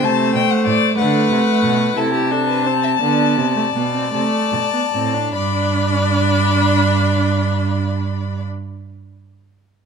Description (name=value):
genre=classical, baroque-style fugue for string quartet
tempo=47-65 BPM (dotted quarters)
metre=12/8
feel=straight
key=G major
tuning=A4 = 440 Hz
part: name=rich violin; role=melody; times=0.0-8.4 s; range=D5 to B5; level=-21 LUFS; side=left 12 dB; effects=none
part: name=rich violin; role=second line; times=0.0-8.4 s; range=G4 to E5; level=-24 LUFS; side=left 6 dB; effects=none
part: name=rich viola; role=accompaniment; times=0.0-8.4 s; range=A3 to E4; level=-20 LUFS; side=right 3 dB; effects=none
part: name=rich cello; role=bass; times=0.0-8.4 s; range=G2 to D3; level=-20 LUFS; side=right 5 dB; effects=none
room=moderate recital hall reverb, RT60 1.9 s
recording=close, detailed microphones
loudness=-15 LUFS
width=side -6 dB against mid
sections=0.0-5.4 A section; 5.4-9.9 B section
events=slowing down 0.0-5.4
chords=0.0 Am; 5.4 G